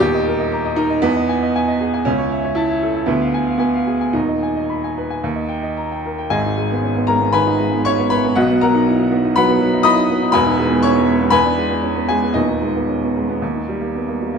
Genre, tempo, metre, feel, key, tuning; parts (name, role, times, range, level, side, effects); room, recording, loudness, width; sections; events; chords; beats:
classical, virtuoso piano study; 109-125 BPM; 4/4; rubato; G# minor; A4 = 440 Hz
warm baby grand piano; solo; 0.0-14.4 s; D#1 to D#6; -15 LUFS; equal
wet recital hall reverb, RT60 1.7 s; -15 LUFS; side -6 dB against mid
0.0-6.3 A section; 6.3-14.4 B section
0.0 D#; 1.0 Emaj7; 2.1 A/C#; 3.1 Ddim7; 4.1 G#m/D#; 5.2 D#; 6.3 G#m; 8.4 B; 10.3 Emaj7; 11.3 E7; 12.4 G#m/D#; 13.4 D#
0.51 1.02 1.54 | 2.06 2.57 3.08 3.61 | 4.14 4.68 5.22 5.77 | 6.31 6.83 7.33 7.85 | 8.37 8.86 9.35 9.84 | 10.33 10.83 11.32 11.83 | 12.36 12.89 13.42 13.95